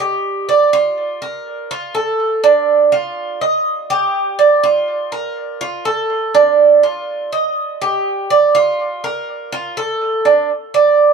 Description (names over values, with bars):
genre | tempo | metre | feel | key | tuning
latin | 123 BPM | 4/4 | straight | unclear | A4 = 441 Hz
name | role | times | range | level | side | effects
Cuban tres | solo | 0.0-11.1 s | D4 to Eb5 | -13 LUFS | right 4 dB | tape echo
room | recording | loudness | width
wet small room ambience, RT60 0.5 s | none | -13 LUFS | side -6 dB against mid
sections
0.0-10.5 A section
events
none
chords
none